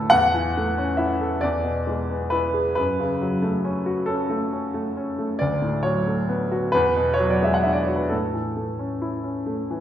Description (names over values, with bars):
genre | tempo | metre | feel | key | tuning
classical, romantic nocturne for solo piano | 45 BPM (dotted quarters) | 12/8 | rubato | A major | A4 = 440 Hz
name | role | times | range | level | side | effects
clear baby grand piano | solo | 0.0-9.8 s | D2 to F#5 | -20 LUFS | equal | none
room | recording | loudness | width
wet recital hall reverb, RT60 1.3 s | heard from further back in the room | -21 LUFS | side -10 dB against mid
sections
0.0-9.8 A section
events
none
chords
0.1 A/E; 1.4 E7; 2.8 F#m; 5.4 Bm7/D; 6.7 E9; 8.1 A